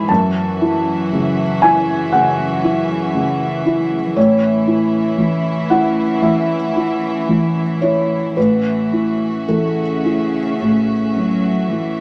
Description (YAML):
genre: neoclassical piano and strings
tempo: 54-60 BPM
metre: 4/4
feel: rubato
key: F# minor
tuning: A4 = 441 Hz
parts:
  - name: warm cello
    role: second line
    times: 0.0-12.0 s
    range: C#3 to F#3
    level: -27 LUFS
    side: equal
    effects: none
  - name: felt-muted upright piano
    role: accompaniment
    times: 0.0-12.0 s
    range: F#2 to B5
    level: -18 LUFS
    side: equal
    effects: none
  - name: warm chamber string section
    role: sustained chords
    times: 0.0-12.0 s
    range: C#4 to E5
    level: -28 LUFS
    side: equal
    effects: none
room: moderate studio reverb, RT60 0.6 s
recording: none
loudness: -17 LUFS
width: mono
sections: 0.0-12.0 A section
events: none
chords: 0.1 F#m7; 4.2 A; 8.4 F#m7/A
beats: | 0.09 1.11 2.12 3.14 | 4.16 5.18 6.23 7.28 | 8.36 9.48 10.60 11.70